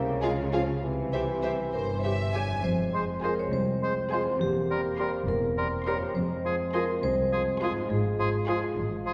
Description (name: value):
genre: cinematic, playful, whimsical film cue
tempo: 68 BPM (dotted quarters)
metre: 6/8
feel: straight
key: F minor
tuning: A4 = 440 Hz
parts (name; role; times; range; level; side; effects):
- clear bassoon; accompaniment; 0.0-9.1 s; E3 to Bb3; -38 LUFS; equal; none
- concert harp; arpeggios; 0.0-9.1 s; E2 to C5; -41 LUFS; equal; none
- dark studio double bass section; bass; 0.0-9.1 s; E1 to Db2; -37 LUFS; equal; none
- rich studio cello section; bass; 0.0-9.1 s; C2 to Db3; -36 LUFS; equal; none
- rich studio violin section; melody; 0.2-8.7 s; E5 to C6; -44 LUFS; equal; none
- rich studio violin section; second line; 0.2-8.7 s; Ab4 to Ab5; -40 LUFS; equal; none
- clear studio viola section; accompaniment; 0.2-8.7 s; F4 to G4; -38 LUFS; equal; none
- vibraphone with hard mallets; melody; 1.7-8.7 s; G4 to E5; -34 LUFS; equal; none
- dark French horn section; sustained chords; 2.6-9.1 s; Ab3 to F4; -36 LUFS; equal; none
- bright oboe; second line; 2.9-9.1 s; Ab4 to C5; -39 LUFS; equal; none
- flute section; second line; 2.9-9.1 s; C6; -40 LUFS; equal; none
room: wet scoring stage reverb, RT60 1.9 s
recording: heard from further back in the room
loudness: -28 LUFS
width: mono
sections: 0.0-2.6 A section; 2.6-9.1 B section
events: none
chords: 0.0 Db; 0.8 C; 2.6 Fm; 4.4 C7/E; 6.2 Fm; 7.9 Fm/Ab